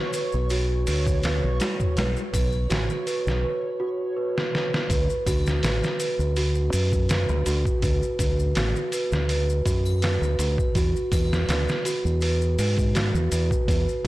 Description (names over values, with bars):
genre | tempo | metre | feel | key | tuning
trip hop | 82 BPM | 4/4 | swing 53% on 16ths | unclear | A4 = 438 Hz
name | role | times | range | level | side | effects
large celesta | arpeggios | 0.0-14.1 s | F#4 to B4 | -27 LUFS | right 1 dB | vintage 12-bit sampler grit, digital delay
backwards swelling texture | texture | 0.0-3.4 s | C#5 | -37 LUFS | right 2 dB | built-in reverb
trip hop sampler-style drum kit | drums | 0.1-14.1 s | hi-hat, kick drum, snare drum | -26 LUFS | equal | none
maracas and triangle | percussion | 0.1-14.0 s | none | -39 LUFS | left 5 dB | none
deep dub fingered electric bass | bass | 0.3-14.1 s | A1 to G#2 | -24 LUFS | equal | tube saturation
room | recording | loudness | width
digital ambience | blown-out, overdriven recording, overdrive | -21 LUFS | side -17 dB against mid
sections
0.0-4.9 A section; 4.9-14.1 B section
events
drum fill 4.4-4.9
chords
0.0 A69 (rootless); 2.0 Aadd9 (rootless); 4.9 D; 10.8 Eadd9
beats
0.51 1.24 | 1.98 2.71 3.44 4.17 | 4.90 5.63 6.37 7.10 | 7.83 8.56 9.29 10.03 | 10.76 11.49 12.22 12.95 | 13.68